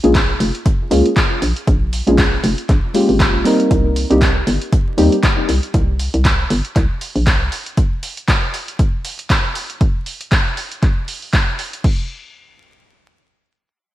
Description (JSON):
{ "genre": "deep house", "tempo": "118 BPM", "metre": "4/4", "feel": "swing 57% on 16ths", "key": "unclear", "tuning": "A4 = 440 Hz", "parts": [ { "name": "deep mellow chord stab", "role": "stabs", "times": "0.0-5.2 s", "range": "G3 to Bb4", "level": "-16 LUFS", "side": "equal", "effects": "chorus, sidechain pumping, ping-pong delay" }, { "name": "hollow knocking FM bass", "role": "bass", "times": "0.0-7.5 s", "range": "F1 to Eb2", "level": "-17 LUFS", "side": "equal", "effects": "sidechain pumping" }, { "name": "punchy analog drum machine", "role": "drums", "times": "0.0-12.0 s", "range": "crash cymbal, handclaps, hi-hat", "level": "-22 LUFS", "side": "right 1 dB", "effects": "gated reverb" }, { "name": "breakbeat sampler-style drum kit", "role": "drums", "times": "0.1-9.7 s", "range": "hi-hat, snare drum", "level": "-32 LUFS", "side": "equal", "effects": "overdrive, high-pass filter on snare, high-pass filter on hats, high-pass filter on room, gated reverb" }, { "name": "electronic kick drum", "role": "drums", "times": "0.1-12.0 s", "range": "none", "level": "-15 LUFS", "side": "equal", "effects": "none" } ], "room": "light reverb, digital ambience", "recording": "bright 1980s-style digital production, vinyl crackle", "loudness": "-14 LUFS", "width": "side -14 dB against mid", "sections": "0.0-11.8 A section; 11.8-13.9 B section", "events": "drop 0.0-11.8", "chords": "0.0 Bbm7; 3.7 Cm7; 7.8 N.C.", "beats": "0.15 0.66 1.17 | 1.67 2.18 2.69 3.20 | 3.71 4.22 4.72 5.23 | 5.74 6.25 6.76 7.27 | 7.78 8.28 8.79 9.30 | 9.81 10.32 10.83 11.34 | 11.84" }